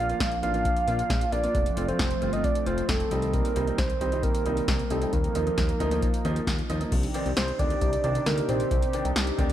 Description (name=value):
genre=synth-pop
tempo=134 BPM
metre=4/4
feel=straight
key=unclear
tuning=A4 = 440 Hz
part: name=soft octave-layered synth lead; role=melody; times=0.0-8.9 s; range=A4 to F5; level=-29 LUFS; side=right 2 dB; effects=chorus, tape echo
part: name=warm baby grand piano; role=accompaniment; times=0.0-9.5 s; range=Eb3 to F4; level=-33 LUFS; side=right 1 dB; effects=none
part: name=chorused pulse-width pad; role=sustained chords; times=0.0-9.5 s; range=C3 to G4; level=-33 LUFS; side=left 1 dB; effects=none
part: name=fat analog bass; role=bass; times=0.0-9.5 s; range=F1 to Eb2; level=-30 LUFS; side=equal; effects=none
part: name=electro analog drum machine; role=drums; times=0.1-9.5 s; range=crash cymbal, hi-hat, kick drum, snare drum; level=-28 LUFS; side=equal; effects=none
room=light reverb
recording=none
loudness=-23 LUFS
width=side -12 dB against mid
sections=0.0-6.9 A section; 6.9-9.5 B section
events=none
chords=0.0 Bb; 1.5 F; 3.1 Cm; 5.1 Ebsus2; 6.9 Cmadd9